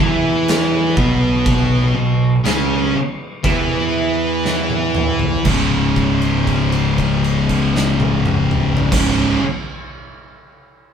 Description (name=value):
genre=stoner and doom metal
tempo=59 BPM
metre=4/4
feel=straight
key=C# minor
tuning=A4 = 439 Hz
part: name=heavy high-gain guitar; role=riff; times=0.0-9.4 s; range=C#2 to E4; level=-24 LUFS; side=right 1 dB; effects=distortion
part: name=thick fuzz guitar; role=riff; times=0.0-9.4 s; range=C#2 to E4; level=-20 LUFS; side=left 4 dB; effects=distortion
part: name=thick fuzz guitar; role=riff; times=0.0-9.4 s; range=C#2 to E4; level=-19 LUFS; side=right 3 dB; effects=distortion
part: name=fuzz picked electric bass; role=bass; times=0.0-9.3 s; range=C#1 to E2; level=-24 LUFS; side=equal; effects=overdrive
part: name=oversized low-tuned drum kit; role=drums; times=0.5-9.2 s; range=crash cymbal, kick drum, snare drum, toms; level=-21 LUFS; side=equal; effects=none
room=wet studio reverb, RT60 0.8 s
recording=band playing live in one room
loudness=-14 LUFS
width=side -7 dB against mid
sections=0.0-5.5 A section; 5.5-9.5 B section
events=slowing down 0.0-5.5; drum fill 4.4-5.5; held note 5.5-8.9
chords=0.0 B5; 5.5 C#5